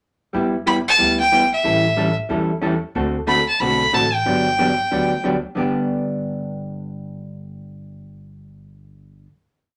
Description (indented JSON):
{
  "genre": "country, western swing",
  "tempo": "184 BPM",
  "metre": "4/4",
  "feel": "swing 62% on 8ths",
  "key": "G major",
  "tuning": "A4 = 440 Hz",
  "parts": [
    { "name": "vintage hollow-body jazz guitar", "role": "accompaniment", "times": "0.3-9.3 s", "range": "G2 to A4", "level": "-24 LUFS", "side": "equal", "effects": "none" },
    { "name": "upright bass", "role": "bass", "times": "0.3-9.2 s", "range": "G1 to E2", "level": "-35 LUFS", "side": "equal", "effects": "none" },
    { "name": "clear fiddle", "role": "melody", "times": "0.7-5.2 s", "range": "E5 to B5", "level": "-19 LUFS", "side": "equal", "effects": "none" }
  ],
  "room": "moderate studio ambience, RT60 0.5 s",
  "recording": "none",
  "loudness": "-19 LUFS",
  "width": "mono",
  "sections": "0.3-5.6 A section; 5.6-8.2 final chord",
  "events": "none",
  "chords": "0.3 G6; 1.6 A7; 3.0 D7; 4.3 Gmaj7; 5.6 G"
}